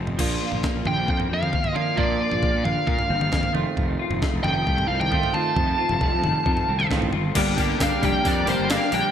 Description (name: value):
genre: indie rock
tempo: 134 BPM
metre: 4/4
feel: straight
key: unclear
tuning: A4 = 440 Hz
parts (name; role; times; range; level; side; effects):
- overdriven electric guitar; riff; 0.0-9.1 s; Eb3 to G4; -29 LUFS; right 7 dB; analog chorus, ping-pong delay
- raw garage guitar; riff; 0.0-9.1 s; F2 to G4; -29 LUFS; left 9 dB; overdrive, analog chorus
- fuzz fingered electric bass; bass; 0.0-9.0 s; F1 to Bb2; -27 LUFS; equal; overdrive
- breakbeat sampler-style drum kit; drums; 0.1-9.0 s; crash cymbal, hi-hat, kick drum, snare drum, toms; -25 LUFS; equal; gated reverb
- bluesy overdriven lead guitar; melody; 0.9-9.1 s; C5 to A5; -25 LUFS; right 1 dB; distortion, ping-pong delay
- phased analog pad; sustained chords; 3.8-9.1 s; F4 to Bb5; -35 LUFS; equal; phaser, chorus
room: light reverb, digital ambience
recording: bright 1980s-style digital production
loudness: -20 LUFS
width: side -9 dB against mid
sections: 0.2-7.4 A section; 7.4-9.1 B section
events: kick and snare drop out 7.1; lead electric guitar solo 7.4-9.1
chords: 0.2 Bbadd9; 3.5 F7; 7.4 Gm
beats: | 0.19 0.63 1.08 1.53 | 1.98 2.43 2.88 3.33 | 3.77 4.22 4.67 5.12 | 5.56 6.01 6.46 6.91 | 7.35 7.80 8.25 8.69